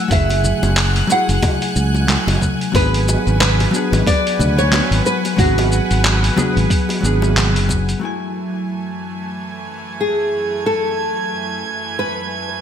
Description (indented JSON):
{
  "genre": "sunset chillout",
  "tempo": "91 BPM",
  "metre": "4/4",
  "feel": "swing 58% on 16ths",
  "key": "F# minor",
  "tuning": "A4 = 440 Hz",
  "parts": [
    { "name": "hollow-body jazz guitar", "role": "accompaniment", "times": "0.0-12.6 s", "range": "F#3 to G#5", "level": "-21 LUFS", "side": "moving between left 4 dB and right 4 dB", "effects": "auto-pan, ping-pong delay" },
    { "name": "rich chamber string section", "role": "sustained chords", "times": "0.0-12.6 s", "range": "F#2 to F#6", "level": "-26 LUFS", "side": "right 1 dB", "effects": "none" },
    { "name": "nylon-string guitar", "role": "melody", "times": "0.1-12.6 s", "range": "F#4 to F#5", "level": "-20 LUFS", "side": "equal", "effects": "wide subtle chorus, ping-pong delay" },
    { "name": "modern bright fingered electric bass", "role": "bass", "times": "0.1-7.9 s", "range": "F#1 to D2", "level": "-17 LUFS", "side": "equal", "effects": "tube saturation" },
    { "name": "dusty soul sampler-style drum kit", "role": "drums", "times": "0.1-8.0 s", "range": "congas, handclaps, hi-hat, shaker", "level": "-21 LUFS", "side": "equal", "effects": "gated reverb" },
    { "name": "electronic kick drum", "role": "drums", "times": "0.1-7.8 s", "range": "none", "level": "-19 LUFS", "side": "equal", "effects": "none" },
    { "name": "bongos", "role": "percussion", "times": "0.3-7.8 s", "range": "none", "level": "-29 LUFS", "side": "left 3 dB", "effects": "none" },
    { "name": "drifting glass-harmonics texture", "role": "texture", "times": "8.9-12.6 s", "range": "G#6", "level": "-28 LUFS", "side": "right 5 dB", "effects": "chorus, built-in reverb" }
  ],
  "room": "moderate lush hall reverb, RT60 1.7 s",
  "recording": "bright 1980s-style digital production",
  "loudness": "-14 LUFS",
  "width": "side -8 dB against mid",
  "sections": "0.0-8.0 A section; 8.0-12.6 B section",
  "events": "none",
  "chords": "0.0 F#m9; 2.7 G#m7b5; 8.0 F#m9"
}